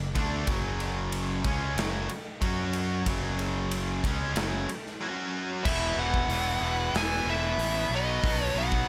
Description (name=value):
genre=hard rock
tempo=93 BPM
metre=4/4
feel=straight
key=unclear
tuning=A4 = 438 Hz
part: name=distorted electric guitar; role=riff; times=0.0-8.9 s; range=E2 to F#4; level=-36 LUFS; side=equal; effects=overdrive
part: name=overdriven electric guitar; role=riff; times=0.0-8.9 s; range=E2 to F#4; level=-37 LUFS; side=equal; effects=none
part: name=fuzz fingered electric bass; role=bass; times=0.0-8.8 s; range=E1 to F#2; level=-35 LUFS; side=equal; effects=overdrive
part: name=big rock drum kit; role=drums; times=0.2-8.9 s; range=crash cymbal, hi-hat, kick drum, ride cymbal, snare drum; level=-35 LUFS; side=equal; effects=none
part: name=smooth overdriven lead guitar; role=melody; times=5.6-8.9 s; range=D#5 to G#5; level=-32 LUFS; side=equal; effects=none
part: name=tight distorted guitar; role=riff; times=5.6-8.9 s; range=B2 to E4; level=-38 LUFS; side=equal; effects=distortion
part: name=octave-fuzz lead guitar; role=second line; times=5.7-8.9 s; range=B4 to E5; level=-40 LUFS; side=equal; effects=distortion
room=light reverb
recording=none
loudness=-29 LUFS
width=mono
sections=0.0-5.7 A section; 5.7-8.9 B section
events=none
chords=0.0 F#5; 5.7 E; 7.9 B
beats=| 0.48 1.13 1.77 2.42 | 3.07 3.72 4.36 5.01 | 5.65 6.30 6.94 7.59 | 8.23 8.87